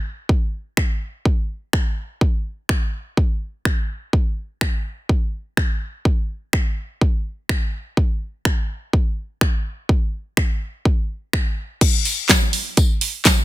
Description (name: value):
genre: pop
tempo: 125 BPM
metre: 4/4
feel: straight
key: none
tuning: none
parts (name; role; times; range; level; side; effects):
- pop drum kit; drums; 0.3-13.4 s; crash cymbal, finger snaps, handclaps, hi-hat, kick drum, snare drum; -17 LUFS; equal; soft clipping on snare
- tambourine; percussion; 12.1-13.4 s; none; -26 LUFS; left 4 dB; none
room: digital ambience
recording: dense, heavily limited modern master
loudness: -19 LUFS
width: side -16 dB against mid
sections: 0.0-11.8 A section; 11.8-13.4 B section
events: none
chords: none